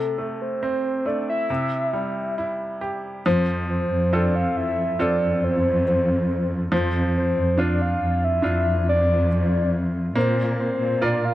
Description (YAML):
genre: pop ballad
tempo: 70 BPM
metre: 4/4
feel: straight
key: F major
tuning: A4 = 442 Hz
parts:
  - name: soft octave-layered synth lead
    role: melody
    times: 0.0-11.3 s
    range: A4 to F5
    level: -24 LUFS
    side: equal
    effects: chorus, phaser, slapback echo
  - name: bright upright piano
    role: accompaniment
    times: 0.0-11.3 s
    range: C3 to D5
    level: -26 LUFS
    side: right 2 dB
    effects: none
  - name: dark chamber cello section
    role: bass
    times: 3.2-11.3 s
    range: F2 to Bb2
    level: -22 LUFS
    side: equal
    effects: none
room: little or no reverb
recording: dry, close 1970s-style studio recording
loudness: -20 LUFS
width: side -14 dB against mid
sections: 0.0-3.3 A section; 3.3-11.3 B section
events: none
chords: 0.0 C69; 1.5 C; 3.3 F; 6.7 Dmadd9/F; 10.2 Bb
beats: 0.62 1.50 2.38 | 3.25 4.13 5.00 5.86 | 6.72 7.58 8.44 9.30 | 10.16 11.02